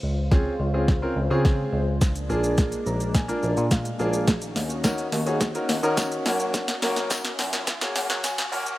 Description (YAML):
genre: dance-pop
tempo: 106 BPM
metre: 4/4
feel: straight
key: unclear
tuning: A4 = 440 Hz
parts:
  - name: warm analog pad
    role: sustained chords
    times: 0.0-8.8 s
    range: Db3 to C5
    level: -32 LUFS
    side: left 2 dB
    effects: chorus, sidechain pumping
  - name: bell-like tine electric piano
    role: bass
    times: 0.0-8.7 s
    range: Bb1 to Gb3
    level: -28 LUFS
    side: equal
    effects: medium stereo tremolo, sidechain pumping
  - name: riser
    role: sound effects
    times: 2.2-8.8 s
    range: none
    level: -40 LUFS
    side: right 1 dB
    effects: none
  - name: bright concert grand piano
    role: accompaniment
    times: 0.3-8.8 s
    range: Bb3 to Bb5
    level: -27 LUFS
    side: equal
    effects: none
  - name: smooth R&B drum kit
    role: drums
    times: 0.3-8.8 s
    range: hi-hat, kick drum, shaker, snare drum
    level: -24 LUFS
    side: equal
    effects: overdrive
  - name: tambourine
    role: percussion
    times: 4.8-8.4 s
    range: none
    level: -38 LUFS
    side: left 2 dB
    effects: none
room: light reverb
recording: rough home demo mix, high-pass filter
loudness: -22 LUFS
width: side -16 dB against mid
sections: 0.0-8.8 A section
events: build-up 0.0-8.8; drum fill 0.0-8.8; filter sweep 0.0-8.8; grand piano fill 2.6-4.3, 8.0-8.8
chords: 0.0 Dbmaj7; 2.0 Bb7; 4.3 Ebm7; 6.3 Gb